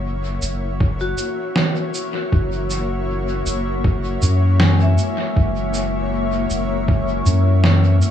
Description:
ambient dub; 79 BPM; 4/4; straight; F# mixolydian; A4 = 440 Hz
granular cloud pad; sustained chords; 0.0-8.1 s; A#3 to C#5; -26 LUFS; left 1 dB; built-in reverb
soft dub sub bass; bass; 0.0-8.0 s; F#1 to F#2; -18 LUFS; equal
electronic cabasa and snare drum; drums; 0.4-8.1 s; -22 LUFS; right 2 dB; dub echo
electronic kick drum; drums; 0.8-7.0 s; -18 LUFS; equal
vibraphone with medium hard mallets; arpeggios; 1.0-8.1 s; G#3 to E5; -25 LUFS; left 3 dB; dub echo
little or no reverb; echo-heavy mix, small room ambience; -16 LUFS; side -10 dB against mid
0.0-8.1 A section
fade-in on ambient pad 0.0-8.1
0.0 F#7
0.04 0.80 1.56 | 2.32 3.08 3.84 4.60 | 5.36 6.12 6.88 7.64

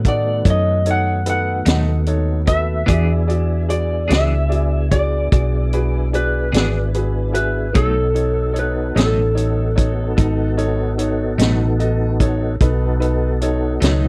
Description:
slow blues; 49 BPM (dotted quarters); 12/8; straight; B mixolydian; A4 = 441 Hz
electric slide guitar; melody; 0.0-10.5 s; A4 to F#5; -25 LUFS; equal
tonewheel organ; sustained chords; 0.0-14.1 s; D#3 to A4; -29 LUFS; equal; slow rotary speaker, chorus vibrato
hollow-body short-scale fingered electric bass; bass; 0.0-14.1 s; G#1 to A2; -21 LUFS; equal
vintage drum kit; drums; 0.0-14.0 s; hi-hat, kick drum, snare drum; -20 LUFS; equal
clear upright piano; accompaniment; 0.1-14.1 s; D#4 to F#5; -27 LUFS; equal
clean electric guitar; accompaniment; 1.7-14.1 s; B2 to G#4; -26 LUFS; equal; tremolo
little or no reverb; dry, close 1970s-style studio recording; -18 LUFS; mono
0.0-14.1 A section
0.0 B7; 2.9 E7; 7.7 B7
0.46 1.67 | 2.89 4.10 5.32 6.53 | 7.75 8.96 10.18 11.39 | 12.60 13.81

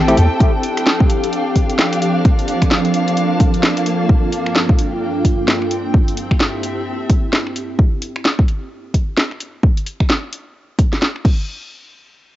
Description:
UK garage, two-step garage; 130 BPM; 4/4; swing 60% on 16ths; A4 = 440 Hz
ethereal airy pad; sustained chords; 0.0-7.8 s; G2 to A4; -20 LUFS; right 1 dB; ensemble chorus, built-in reverb, sidechain pumping, cassette tape
clear chamber string section; texture; 0.0-7.8 s; F3 to A5; -23 LUFS; left 1 dB; sidechain pumping, cassette tape
house drum kit; drums; 0.1-11.4 s; crash cymbal, finger snaps, hi-hat, snare drum; -18 LUFS; equal; overdrive, cassette tape
electronic kick drum; drums; 0.4-11.4 s; -14 LUFS; equal; overdrive, cassette tape
light reverb, digital ambience; home recording on cassette, nothing above 7.7 kHz; -14 LUFS; side -14 dB against mid
0.0-11.5 A section
fade-out on string section 0.0-7.8; filter sweep on ambient pad 0.0-7.8
0.4 F69; 2.0 Bbmaj7/F; 4.1 Gm7; 5.7 Am7; 7.8 N.C.
| 0.40 0.86 1.33 1.79 | 2.25 2.71 3.17 3.63 | 4.09 4.56 5.02 5.48 | 5.94 6.40 6.86 7.33 | 7.79 8.25 8.71 9.17 | 9.63 10.10 10.56 11.02

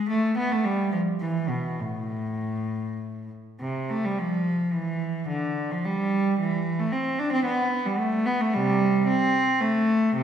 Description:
classical, baroque-style suite movement for unaccompanied cello; 96-113 BPM; 3/4; rubato; C major from 3.6 s; A4 = 441 Hz
rich cello; solo; 0.0-10.2 s; A2 to D4; -23 LUFS; right 1 dB
wet scoring stage reverb, RT60 1.7 s; heard from further back in the room; -23 LUFS; side -8 dB against mid
0.0-3.6 A section; 3.6-10.2 A section
| 0.10 0.65 1.21 | 1.80 2.40 3.00 | 3.61 4.18 4.73 | 5.28 5.83 6.38 | 6.93 7.47 8.00 | 8.54 9.08 9.62 | 10.16

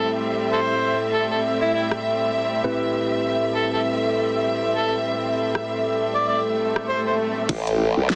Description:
glitch hop; 99 BPM; 4/4; swing 59% on 16ths; A minor; A4 = 442 Hz
overdriven harmonica; melody; 0.0-7.1 s; E4 to D5; -28 LUFS; equal; dub echo
rich studio string section; sustained chords; 0.0-8.2 s; A2 to E5; -28 LUFS; equal; sidechain pumping
tine electric piano; stabs; 0.0-7.5 s; A2 to C5; -30 LUFS; equal; sidechain pumping, low-pass filter, dub echo
warbly tape-like pad; texture; 0.0-8.2 s; A4 to E5; -30 LUFS; equal; chorus, built-in reverb, sidechain pumping
dubstep drum kit; drums; 1.9-8.2 s; crash cymbal, hi-hat, rim click, snare drum; -28 LUFS; equal; overdrive, small room ambience
swell; sound effects; 6.5-7.5 s; -31 LUFS; equal
formant-sweep wobble bass; bass; 7.5-8.2 s; A1 to C2; -24 LUFS; equal; chorus, overdrive
electronic kick drum; drums; 7.5-7.6 s; -30 LUFS; equal; overdrive, small room ambience
wet small room reverb, RT60 0.5 s; heavily compressed radio sound, multiband compression, small speaker sound; -23 LUFS; mono
0.0-7.5 A section
swell 6.5-7.5
0.0 Am9; 7.5 Am7
| 0.22 0.82 1.43 2.04 | 2.64 3.25 3.85 4.46 | 5.07 5.67 6.28 6.89 | 7.49 8.10

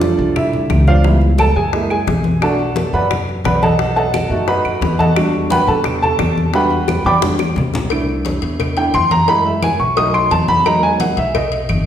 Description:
Afro-Cuban jazz; 175 BPM; 4/4; straight; E minor; A4 = 440 Hz
warm upright piano; accompaniment; 0.0-11.9 s; F#3 to D#6; -16 LUFS; right 1 dB
upright bass; bass; 0.0-11.9 s; G1 to F#2; -20 LUFS; equal
bongos and cowbell; percussion; 0.0-11.9 s; -24 LUFS; left 6 dB
congas; percussion; 0.0-11.9 s; -21 LUFS; left 1 dB
claves; percussion; 0.4-11.9 s; -30 LUFS; right 3 dB
wet recital hall reverb, RT60 1.2 s; recorded in a church or concert hall; -13 LUFS; side -10 dB against mid
0.0-7.9 A section; 7.9-11.9 A section
upright piano solo 0.0-11.9; drum fill 6.9-7.9
0.0 F6; 1.0 C#m7b5; 1.7 F#7; 2.4 Bm7; 3.8 B7; 5.2 Em9; 7.9 C69; 9.3 F#m9; 10.0 B7; 10.7 Emaj9
0.02 0.36 0.70 | 1.05 1.39 1.73 2.08 | 2.42 2.76 3.10 3.45 | 3.79 4.13 4.48 4.82 | 5.16 5.51 5.85 6.19 | 6.54 6.88 7.22 7.57 | 7.91 8.26 8.60 8.94 | 9.29 9.63 9.97 10.32 | 10.66 11.01 11.35 11.70

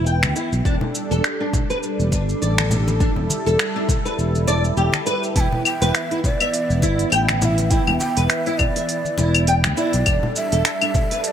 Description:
organic downtempo; 102 BPM; 4/4; swing 56% on 16ths; A4 = 440 Hz
warm analog pad; sustained chords; 0.0-11.3 s; E3 to A4; -26 LUFS; right 1 dB; chorus, sidechain pumping
flamenco guitar; arpeggios; 0.0-11.2 s; D4 to G5; -25 LUFS; equal; ensemble chorus, low-pass filter, ping-pong delay
sustaining fretless electric bass; bass; 0.0-10.6 s; E1 to D2; -20 LUFS; equal; wide subtle chorus, sidechain pumping
organic electronic drum kit; drums; 0.1-11.3 s; claves, finger snaps, hi-hat, shaker; -23 LUFS; left 1 dB
congas; percussion; 0.2-11.1 s; -28 LUFS; left 1 dB
electronic kick drum; drums; 0.7-11.1 s; -21 LUFS; equal
breathy mellow ney; melody; 5.4-11.3 s; D5 to A5; -25 LUFS; right 2 dB; ping-pong delay
moderate plate reverb, RT60 2.8 s; bright 1980s-style digital production; -17 LUFS; side -9 dB against mid
0.0-11.3 A section
0.0 Gadd9/E
0.07 | 0.66 1.24 1.83 2.42 | 3.01 3.60 4.18 4.77 | 5.36 5.95 6.54 7.13 | 7.71 8.30 8.89 9.48 | 10.07 10.65 11.24

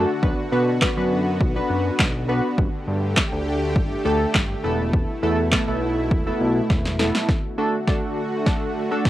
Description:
dance-pop; 102 BPM; 4/4; straight; A4 = 440 Hz
warm analog keys; accompaniment; 0.0-9.1 s; A3 to B4; -24 LUFS; equal; chorus, cassette tape, plate reverb
supersaw pad; sustained chords; 0.0-9.1 s; B2 to G4; -26 LUFS; equal; sidechain pumping, cassette tape, plate reverb
fat analog bass; bass; 0.0-7.1 s; E1 to B2; -25 LUFS; equal; sidechain pumping
punchy analog drum machine; drums; 0.2-9.1 s; handclaps, kick drum, snare drum; -21 LUFS; equal; overdrive, cassette tape
light reverb; home recording on cassette; -19 LUFS; side -14 dB against mid
0.0-7.3 A section; 7.3-9.1 B section
drum fill 6.7-7.3, 7.3-9.1; build-up 7.3-9.1
0.2 Bm; 2.6 Gsus2; 4.6 Esus4; 7.3 D
| 0.23 0.82 1.41 1.99 | 2.58 3.17 3.76 4.35 | 4.93 5.52 6.11 6.70 | 7.29 7.88 8.46 9.05

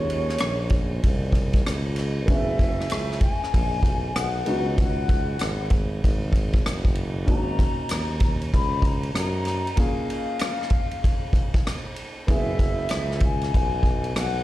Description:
hip hop, jazz-hop; 96 BPM; 4/4; swing 64% on 16ths; A4 = 442 Hz
baroque flute; melody; 0.0-14.4 s; C#5 to B5; -30 LUFS; left 3 dB
dark upright piano; accompaniment; 0.0-14.4 s; G#3 to G#4; -33 LUFS; equal
breathy tuba; bass; 0.0-14.4 s; F#1 to F#2; -27 LUFS; equal
vintage drum kit; drums; 0.1-14.3 s; hi-hat, kick drum, ride cymbal, rim click; -23 LUFS; equal
little or no reverb; played on a big sound system in a bare room, stone room reverb; -21 LUFS; side -16 dB against mid
0.0-14.4 A section
0.0 D#9sus4; 2.3 F#9sus4; 4.5 C#9sus4; 7.3 G#9sus4; 9.8 A#m7; 12.3 F#9sus4
0.41 1.03 1.66 | 2.28 2.91 3.53 4.16 | 4.78 5.41 6.03 6.66 | 7.28 7.91 8.53 9.16 | 9.78 10.41 11.03 11.66 | 12.28 12.91 13.53 14.16

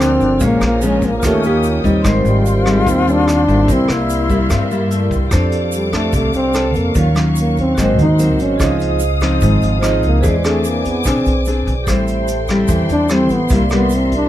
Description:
bossa nova; 147 BPM; 4/4; straight; A4 = 441 Hz
dark trombone; melody; 0.0-14.3 s; G3 to Eb4; -17 LUFS; equal
alto flute; second line; 0.0-5.3 s; G3 to F4; -23 LUFS; left 5 dB
nylon-string guitar; accompaniment; 0.0-14.3 s; G2 to A4; -18 LUFS; left 2 dB
vibraphone with medium hard mallets; accompaniment; 0.0-14.3 s; C4 to F5; -24 LUFS; right 4 dB
warm studio string section; sustained chords; 0.0-14.3 s; Gb3 to F6; -26 LUFS; left 3 dB
upright bass; bass; 0.0-14.3 s; G1 to G2; -18 LUFS; equal
vintage brush drum kit; drums; 0.0-14.2 s; hi-hat, kick drum, rim click; -23 LUFS; equal
egg shaker; percussion; 0.0-14.3 s; -34 LUFS; right 8 dB
little or no reverb; close, detailed microphones; -12 LUFS; side -13 dB against mid
0.0-5.3 A section; 5.3-14.3 B section
trombone solo 5.3-14.3
0.4 Bbm7; 1.2 Eb7; 2.0 Abmaj7; 3.7 C7; 5.3 F6; 7.0 Ebm9; 7.8 Ab9; 8.6 Dbmaj9; 10.2 E7b13; 11.9 Am7; 13.5 C7
0.00 | 0.41 0.82 1.23 1.64 | 2.05 2.46 2.87 3.27 | 3.68 4.09 4.50 4.91 | 5.32 5.73 6.14 6.55 | 6.96 7.37 7.78 8.19 | 8.59 9.00 9.41 9.82 | 10.23 10.64 11.05 11.46 | 11.87 12.28 12.69 13.10 | 13.51 13.92

